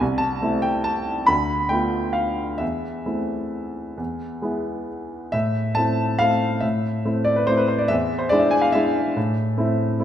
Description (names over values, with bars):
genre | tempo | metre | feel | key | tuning
classical, piano waltz | 127-150 BPM | 3/4 | rubato | A minor | A4 = 440 Hz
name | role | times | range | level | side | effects
warm grand piano | solo | 0.0-10.0 s | C2 to B5 | -20 LUFS | equal | none
room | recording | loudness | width
moderate concert hall reverb, RT60 2.1 s | minimal, uncompressed stereo recording | -20 LUFS | side -10 dB against mid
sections
0.0-5.3 A section; 5.3-10.0 B section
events
none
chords
0.0 Am/C; 1.3 Bm7b5/D; 2.6 Am/E; 4.0 E; 5.3 Am; 7.9 E7; 9.2 Am